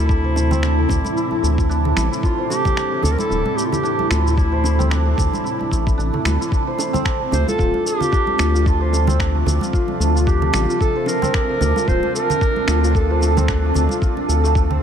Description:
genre	organic downtempo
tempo	112 BPM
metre	4/4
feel	swing 57% on 16ths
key	D minor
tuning	A4 = 440 Hz
part	mellow clarinet	melody	0.0-14.0 s	E4 to C5	-24 LUFS	equal	ping-pong delay
part	granular cloud pad	sustained chords	0.0-14.8 s	A2 to F4	-25 LUFS	equal	built-in reverb, sidechain pumping
part	santur	arpeggios	0.0-14.8 s	A3 to D5	-23 LUFS	right 1 dB	tape echo
part	round analog bass	bass	0.0-14.8 s	D1 to D2	-18 LUFS	left 1 dB	tube saturation, sidechain pumping
part	electronic kick drum	drums	0.1-14.7 s	none	-20 LUFS	left 1 dB	none
part	electronic shaker and finger snaps	drums	0.1-14.7 s	none	-28 LUFS	left 1 dB	none
part	bongos and congas	percussion	0.4-14.8 s	none	-27 LUFS	right 3 dB	none
room	light reverb, small room ambience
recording	none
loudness	-16 LUFS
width	side -8 dB against mid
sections	0.0-6.5 A section; 6.5-14.8 B section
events	none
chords	0.0 Am/D; 6.5 Dm7

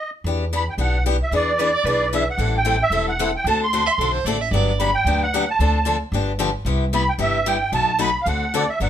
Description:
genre	acoustic string swing (jazz manouche)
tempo	225 BPM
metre	4/4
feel	swing 56% on 8ths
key	E minor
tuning	A4 = 440 Hz
part	musette accordion	melody	0.0-8.9 s	D5 to C6	-20 LUFS	right 2 dB	none
part	upright bass	bass	0.2-8.9 s	E1 to E2	-23 LUFS	equal	none
part	picked steel-string acoustic guitar	accompaniment	0.3-8.9 s	B2 to A4	-24 LUFS	left 5 dB	none
part	warm violin	second line	1.6-4.7 s	A4 to E5	-24 LUFS	right 6 dB	none
room	light reverb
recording	minimal, uncompressed stereo recording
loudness	-18 LUFS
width	side -10 dB against mid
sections	0.2-8.8 A section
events	stop 0.0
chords	0.2 Em7; 1.3 E7; 2.4 Am7; 3.5 D7; 4.5 Gmaj7; 5.6 Dm7; 6.1 G7; 6.7 Cmaj7; 7.7 B7; 8.3 D7

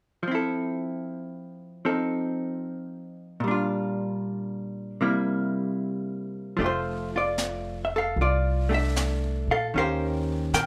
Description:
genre	jazz ballad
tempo	76 BPM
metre	4/4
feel	swing 66% on 8ths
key	F major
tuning	A4 = 440 Hz
part	hollow-body jazz guitar	accompaniment	0.2-10.7 s	Bb2 to G5	-29 LUFS	equal	none
part	upright bass	bass	6.6-10.7 s	F1 to Bb2	-31 LUFS	equal	none
part	jazz brush drum kit	drums	6.6-10.7 s	brushed snare drum, hi-hat, snare drum	-36 LUFS	equal	none
room	light reverb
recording	none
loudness	-28 LUFS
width	mono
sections	0.3-6.6 A section; 6.6-10.7 B section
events	none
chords	0.3 Fmaj7; 1.8 F7; 3.4 Bb6; 5.0 C7; 6.6 F6; 9.7 Eb13

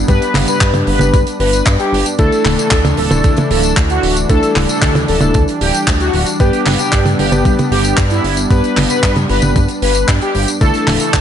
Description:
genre	italo disco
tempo	114 BPM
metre	4/4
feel	straight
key	unclear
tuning	A4 = 440 Hz
part	warm analog pad	sustained chords	0.0-11.2 s	E3 to D4	-20 LUFS	right 1 dB	wide subtle chorus
part	warm electric grand piano	stabs	0.0-11.2 s	A3 to B4	-21 LUFS	left 4 dB	none
part	chorused synth bass	bass	0.0-11.2 s	D1 to G2	-18 LUFS	equal	none
part	mellow synth brass	melody	0.1-11.2 s	E4 to B4	-18 LUFS	equal	chorus, digital delay
part	damped 70s drum kit	drums	0.1-11.2 s	handclaps, hi-hat, tambourine, toms	-17 LUFS	right 1 dB	gated reverb
part	electronic kick drum	drums	0.1-11.2 s	none	-14 LUFS	equal	overdrive
room	light reverb, small room reverb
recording	nothing above 11.0 kHz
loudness	-11 LUFS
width	side -9 dB against mid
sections	0.0-11.2 A section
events	none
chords	0.0 G; 2.2 Dsus2; 6.4 G; 10.6 Dsus2

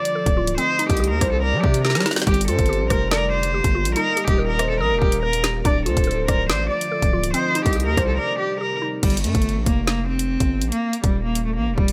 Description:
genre	hip hop, drill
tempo	142 BPM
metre	4/4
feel	half-time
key	G minor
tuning	A4 = 440 Hz
part	clear cello	melody	0.0-11.9 s	G3 to D5	-26 LUFS	equal	low-pass filter, delay
part	breathy flute-like synth lead	second line	0.0-8.6 s	Bb4 to Eb5	-31 LUFS	equal	chorus, delay
part	mallet-like synth pluck	accompaniment	0.0-9.0 s	G3 to Eb6	-30 LUFS	equal	chorus, low-pass filter
part	ethereal airy pad	sustained chords	0.0-9.0 s	C3 to G4	-34 LUFS	equal	ensemble chorus, built-in reverb
part	drill drum kit	drums	0.1-11.9 s	crash cymbal, hi-hat, kick drum, rim click, snare drum	-24 LUFS	equal	none
part	distorted 808-style bass	bass	0.3-11.9 s	C1 to G3	-26 LUFS	equal	distortion
room	digital ambience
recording	none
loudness	-20 LUFS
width	mono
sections	0.0-9.0 A section; 9.0-11.9 B section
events	drum fill 1.8-2.3; break 8.2-9.0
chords	0.0 Dm; 0.6 Cm; 2.3 Gm7; 4.0 Eb; 5.7 Dm; 7.3 Cm; 9.0 Gm7; 10.7 Eb5

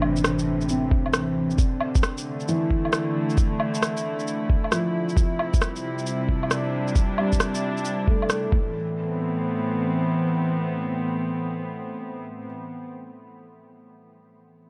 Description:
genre	future garage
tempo	134 BPM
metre	4/4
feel	swing 65% on 16ths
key	A minor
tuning	A4 = 439 Hz
part	felt-muted upright piano	accompaniment	0.0-14.7 s	E3 to D4	-32 LUFS	equal	sidechain pumping, low-pass filter, analog delay
part	dark studio string section	sustained chords	0.0-12.9 s	A2 to E4	-29 LUFS	equal	sidechain pumping
part	soft 808-style bass	bass	0.0-1.6 s	G1 to A1	-36 LUFS	equal	sidechain pumping
part	electronic woodblock, shaker and rim click	drums	0.0-8.4 s	none	-29 LUFS	equal	none
part	electronic kick drum	drums	0.9-8.6 s	none	-24 LUFS	equal	none
room	light reverb, digital ambience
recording	cassette tape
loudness	-24 LUFS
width	mono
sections	0.0-8.7 A section; 8.7-12.3 B section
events	filter sweep on felt piano 0.0-8.7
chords	0.0 Am11; 1.6 Dm7; 5.2 Cadd9; 8.5 A5; 8.7 Amadd9

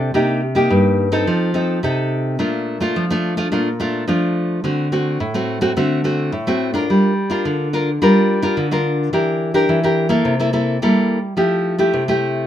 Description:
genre	samba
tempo	107 BPM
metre	4/4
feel	straight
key	unclear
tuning	A4 = 440 Hz
part	nylon-string guitar	solo	0.0-12.5 s	G2 to Bb4	-16 LUFS	equal	none
room	moderate studio reverb, RT60 0.6 s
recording	minimal, uncompressed stereo recording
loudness	-16 LUFS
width	side -10 dB against mid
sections	0.0-11.4 A section; 11.4-12.5 B section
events	none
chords	0.1 Cm7; 1.3 F7; 2.4 Bbmaj7; 4.6 D7; 6.9 Gm7; 9.1 Em7b5; 10.2 C6; 11.4 Fmaj9

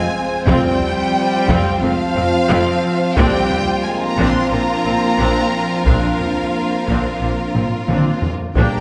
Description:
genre	cinematic, hybrid orchestral and electronic film score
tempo	89 BPM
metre	4/4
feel	straight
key	unclear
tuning	A4 = 440 Hz
part	warm symphonic violin section	melody	0.0-8.8 s	F5 to C6	-26 LUFS	equal	none
part	clear symphonic violin section	second line	0.0-8.8 s	F4 to C5	-27 LUFS	equal	none
part	clear studio viola section	accompaniment	0.0-8.8 s	Ab3 to F4	-26 LUFS	equal	none
part	dark French horn section	sustained chords	0.0-8.8 s	F3 to C4	-26 LUFS	equal	none
part	soft additive organ-like pad	sustained chords	0.0-8.8 s	F3 to C5	-27 LUFS	equal	ensemble chorus, built-in reverb
part	warm trombone section	sustained chords	0.0-8.8 s	F3 to C4	-26 LUFS	equal	none
part	impact	sound effects	0.1-0.5 s	none	-47 LUFS	equal	none
part	rich studio double bass section	bass	0.5-8.6 s	F1 to Bb1	-26 LUFS	equal	none
part	rich symphonic cello section	bass	0.5-8.6 s	F2 to Bb2	-27 LUFS	equal	none
part	taiko ensemble	drums	0.5-8.8 s	none	-23 LUFS	equal	none
room	wet concert hall reverb, RT60 2.0 s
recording	nothing above 10.3 kHz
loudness	-17 LUFS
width	mono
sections	0.0-8.8 A section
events	impact 0.0-0.5; drum fill 7.5-8.6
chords	0.0 Fm; 3.2 Bbadd9

